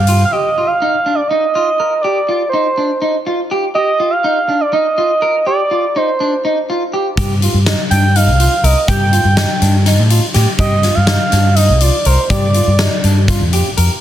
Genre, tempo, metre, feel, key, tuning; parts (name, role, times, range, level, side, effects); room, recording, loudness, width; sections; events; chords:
progressive instrumental, band music in an uneven meter; 246 BPM (eighths); 7/8; straight; A4 = 440 Hz
expressive synth lead; melody; 0.0-13.5 s; C5 to G5; -15 LUFS; right 2 dB; chorus
fingered electric bass; bass; 0.0-0.2, 7.2-13.9 s; C2 to A2; -12 LUFS; equal
electric guitar at the edge of break-up; arpeggios; 0.1-13.9 s; D4 to Bb4; -19 LUFS; equal; tape echo
big rock drum kit; drums; 0.1-0.2, 7.2-13.9 s; hi-hat, kick drum, snare drum; -17 LUFS; left 1 dB; soft clipping on snare
light reverb; dense, heavily limited modern master; -11 LUFS; side -11 dB against mid
0.3-14.0 A section
0.3 Ebadd9; 2.0 Cm; 3.7 Ebadd9; 5.5 Cm; 7.2 Ebadd9/G; 8.9 F9/G; 10.6 Ebadd9/G; 12.3 G5